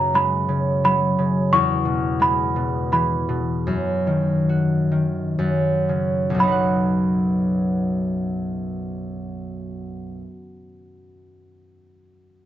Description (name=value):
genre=children's music, lullaby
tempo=55-88 BPM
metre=3/4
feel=rubato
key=B major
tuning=A4 = 440 Hz
part: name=worn celesta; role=melody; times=0.0-9.4 s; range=A#5 to C#6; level=-21 LUFS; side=right 2 dB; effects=none
part: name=concert harp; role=accompaniment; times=0.0-10.2 s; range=B1 to F#5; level=-20 LUFS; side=equal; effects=none
room=moderate studio reverb, RT60 0.6 s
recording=dark, warm production, nothing above 7.7 kHz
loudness=-18 LUFS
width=side -12 dB against mid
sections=0.0-6.4 A section; 6.4-12.5 B section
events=slowing down 1.5-6.4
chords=0.0 F#sus2; 1.5 C#m7/E; 3.7 B/F#; 5.4 F#5; 6.4 B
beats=0.14 0.84 | 1.53 2.22 2.93 | 3.68 4.49 5.40 | 6.42 7.49 8.55 | 9.60